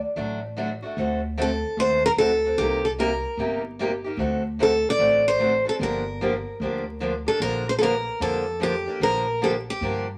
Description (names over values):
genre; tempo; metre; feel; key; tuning
acoustic string swing (jazz manouche); 149 BPM; 4/4; swing 64% on 8ths; G minor; A4 = 438 Hz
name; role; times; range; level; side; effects
picked steel-string acoustic guitar; accompaniment; 0.2-10.0 s; C3 to A4; -29 LUFS; equal; none
upright bass; bass; 0.2-10.2 s; G1 to G2; -35 LUFS; equal; none
picked steel-string acoustic guitar; melody; 1.4-10.1 s; G4 to D5; -25 LUFS; equal; none
room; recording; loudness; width
moderate studio reverb, RT60 0.8 s; vinyl crackle; -24 LUFS; mono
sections
0.0-7.4 A section; 7.4-10.2 B section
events
none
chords
0.0 D; 1.0 D7; 2.6 Cm7; 4.2 D7; 5.8 Gm7; 7.4 Bb6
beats
0.17 0.57 | 0.97 1.37 1.78 2.18 | 2.58 2.98 3.38 3.79 | 4.19 4.59 5.00 5.40 | 5.80 6.20 6.61 7.01 | 7.41 7.81 8.22 8.62 | 9.02 9.43 9.83